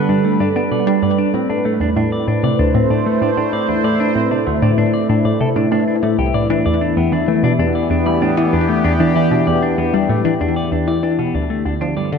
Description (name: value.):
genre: ambient.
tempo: 96 BPM.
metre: 4/4.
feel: straight.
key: unclear.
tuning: A4 = 440 Hz.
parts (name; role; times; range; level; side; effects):
sweeping resonant pad; sustained chords; 0.0-12.2 s; D3 to C5; -18 LUFS; equal; chorus.
clean electric guitar; arpeggios; 0.0-12.2 s; A3 to D5; -21 LUFS; moving between left 5 dB and right 2 dB; auto-pan, low-pass filter, tape echo.
analog pluck; riff; 0.1-12.2 s; C2 to B3; -18 LUFS; equal; chorus, phaser, tape echo.
room: wet plate reverb, RT60 2.5 s.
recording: dark, warm production.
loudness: -14 LUFS.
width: side -6 dB against mid.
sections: 0.0-12.2 A section.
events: fade-out 9.7-12.2.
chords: 0.0 G; 1.3 Am; 6.3 Em; 11.3 Dm.